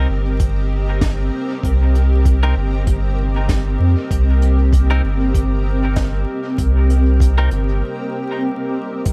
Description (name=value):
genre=ambient dub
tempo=97 BPM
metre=4/4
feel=swing 58% on 16ths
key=C minor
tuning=A4 = 440 Hz
part: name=granular cloud pad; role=sustained chords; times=0.0-9.1 s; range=C4 to Eb5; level=-25 LUFS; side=equal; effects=built-in reverb
part: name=semi-hollow electric guitar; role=stabs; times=0.0-7.5 s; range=C4 to Bb4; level=-31 LUFS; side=equal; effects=dub echo
part: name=warm sub bass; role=bass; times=0.0-9.1 s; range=G1 to F2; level=-18 LUFS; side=equal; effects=none
part: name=electronic kick drum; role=drums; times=0.4-9.1 s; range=none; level=-21 LUFS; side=equal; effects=none
part: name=jazz brush drum kit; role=drums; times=0.4-9.1 s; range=hi-hat, snare drum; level=-32 LUFS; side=equal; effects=dub echo
room=small room ambience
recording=vinyl crackle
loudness=-17 LUFS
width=mono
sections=0.0-9.1 A section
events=break 7.8-9.1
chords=0.0 Cm7